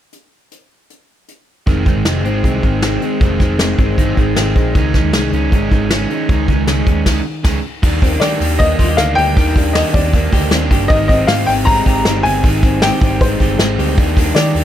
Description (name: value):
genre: jangly indie pop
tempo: 156 BPM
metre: 4/4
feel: straight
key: Eb major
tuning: A4 = 440 Hz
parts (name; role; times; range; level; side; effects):
- soft brush drum kit; drums; 0.1-14.6 s; crash cymbal, hi-hat, kick drum, snare drum; -15 LUFS; equal; none
- overdriven semi-hollow guitar; accompaniment; 1.7-14.6 s; F2 to Eb4; -20 LUFS; right 5 dB; none
- electric guitar through a small old amp; arpeggios; 1.7-14.6 s; Eb3 to G4; -20 LUFS; left 3 dB; analog delay
- picked electric bass; bass; 1.7-14.6 s; F1 to Eb3; -18 LUFS; equal; none
- warm upright piano; melody; 8.2-14.6 s; C5 to Bb5; -18 LUFS; left 2 dB; none
room: small room ambience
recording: none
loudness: -12 LUFS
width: side -11 dB against mid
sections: 0.1-1.7 A section; 1.7-7.8 B section; 7.8-14.6 C section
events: band accent 7.1-7.8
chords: 0.1 N.C.; 1.7 Fm7; 4.8 Dbsus2; 7.8 Ebmaj7; 10.9 Abmaj7; 14.0 Ebmaj7